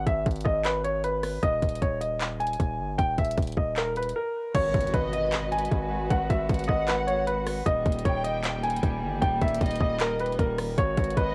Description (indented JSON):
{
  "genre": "hip hop, trap",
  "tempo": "154 BPM",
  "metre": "4/4",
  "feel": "half-time",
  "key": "G# minor",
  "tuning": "A4 = 440 Hz",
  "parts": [
    { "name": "clear concert grand piano", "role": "melody", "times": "0.0-11.3 s", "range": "A#4 to G#5", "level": "-30 LUFS", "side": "equal", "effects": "low-pass filter, cassette tape" },
    { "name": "distorted 808-style bass", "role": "bass", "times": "0.0-11.3 s", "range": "D#1 to G#1", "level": "-34 LUFS", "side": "equal", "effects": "distortion" },
    { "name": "trap drum kit", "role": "drums", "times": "0.1-11.3 s", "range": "crash cymbal, handclaps, hi-hat, kick drum, rim click", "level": "-30 LUFS", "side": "equal", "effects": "none" },
    { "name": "dark chamber string section", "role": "sustained chords", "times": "4.5-11.3 s", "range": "D#3 to B4", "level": "-37 LUFS", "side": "equal", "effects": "cassette tape" },
    { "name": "impact", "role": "sound effects", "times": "4.5-6.1 s", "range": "none", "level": "-43 LUFS", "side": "equal", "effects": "none" },
    { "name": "dark studio violin section", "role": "second line", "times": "4.9-11.3 s", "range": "D#5 to G5", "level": "-38 LUFS", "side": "equal", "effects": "cassette tape, tape echo" }
  ],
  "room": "small room ambience",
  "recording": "home recording on cassette",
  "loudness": "-27 LUFS",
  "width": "mono",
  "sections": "0.0-4.5 A section; 4.5-11.3 B section",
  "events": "break 4.2-4.5; impact 4.5-6.1",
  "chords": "0.0 G#m; 1.4 N.C.; 4.5 G#m7; 7.7 D#; 10.8 G#m7"
}